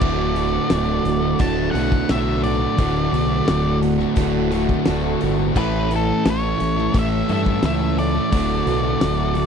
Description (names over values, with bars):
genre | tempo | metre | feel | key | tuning
classic rock | 87 BPM | 4/4 | straight | D major | A4 = 441 Hz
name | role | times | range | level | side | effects
octave-fuzz lead guitar | melody | 0.0-9.5 s | A4 to A5 | -25 LUFS | left 2 dB | distortion, slapback echo
picked steel-string acoustic guitar | accompaniment | 0.0-9.5 s | A2 to A4 | -28 LUFS | right 12 dB | none
tonewheel organ | sustained chords | 0.0-9.5 s | C#3 to A4 | -33 LUFS | left 1 dB | none
crunchy overdriven guitar | riff | 0.0-9.5 s | D2 to A4 | -27 LUFS | left 2 dB | none
sludgy distorted guitar | riff | 0.0-9.5 s | D2 to A4 | -26 LUFS | left 14 dB | overdrive
sludgy distorted guitar | riff | 0.0-9.5 s | D2 to A3 | -24 LUFS | right 10 dB | overdrive
growling fingered electric bass | bass | 0.0-9.5 s | D1 to G2 | -24 LUFS | left 1 dB | overdrive
damped 70s drum kit | drums | 0.0-9.5 s | crash cymbal, hi-hat, kick drum, snare drum | -21 LUFS | left 1 dB | none
room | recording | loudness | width
little or no reverb | dry, close 1970s-style studio recording | -17 LUFS | side -7 dB against mid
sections
0.0-9.5 A section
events
none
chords
0.0 D; 5.6 A; 8.3 D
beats
| 0.02 0.71 1.41 2.10 | 2.79 3.48 4.17 4.86 | 5.56 6.25 6.94 7.63 | 8.32 9.01